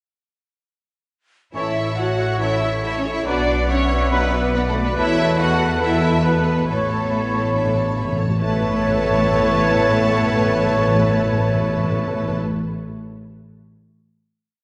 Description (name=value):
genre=cinematic, heroic adventure film score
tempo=140 BPM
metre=4/4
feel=straight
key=A major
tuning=A4 = 440 Hz
part: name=clear symphonic violin section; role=melody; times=1.5-12.4 s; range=A4 to A5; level=-29 LUFS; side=equal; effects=none
part: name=mellow oboe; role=second line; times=1.5-12.4 s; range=B4 to C#5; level=-32 LUFS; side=equal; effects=none
part: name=warm symphonic violin section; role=second line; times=1.5-12.4 s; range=A4 to C#6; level=-33 LUFS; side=equal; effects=none
part: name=rich symphonic viola section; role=accompaniment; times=1.5-12.4 s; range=D4 to E5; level=-32 LUFS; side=equal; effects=none
part: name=clear trombone section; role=sustained chords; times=1.5-12.4 s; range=A2 to A3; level=-34 LUFS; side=equal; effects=none
part: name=dark French horn section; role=sustained chords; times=1.5-12.4 s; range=A3 to F#4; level=-32 LUFS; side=equal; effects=none
part: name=clear trumpet section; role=stabs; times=1.5-12.4 s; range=B4 to C#5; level=-27 LUFS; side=equal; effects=none
part: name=clear symphonic double bass section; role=bass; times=1.5-12.4 s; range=A1 to E2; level=-26 LUFS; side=equal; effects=none
part: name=rich symphonic cello section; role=bass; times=1.5-12.4 s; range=A3 to F#4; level=-28 LUFS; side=equal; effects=none
part: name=timpani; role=percussion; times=1.5-2.1, 6.7-12.4 s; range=A2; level=-26 LUFS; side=equal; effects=none
part: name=concert flute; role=second line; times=1.6-12.4 s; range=E5 to B5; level=-33 LUFS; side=equal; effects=none
part: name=warm clarinet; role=second line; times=2.4-12.4 s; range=A4 to E5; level=-32 LUFS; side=equal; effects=none
room=wet scoring stage reverb, RT60 1.9 s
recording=heard from further back in the room, nothing above 10.7 kHz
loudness=-19 LUFS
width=mono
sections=1.5-8.4 theme; 8.4-11.8 final chord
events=timpani fill 6.7-8.4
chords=1.5 A; 3.3 Bm; 5.0 Esus4; 6.7 Aadd9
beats=| 1.54 1.97 2.40 2.83 | 3.26 3.69 4.12 4.54 | 4.97 5.39 5.82 6.24 | 6.68 7.11 7.54 7.98 | 8.41 8.84 9.27 9.69 | 10.12 10.55 10.97 11.40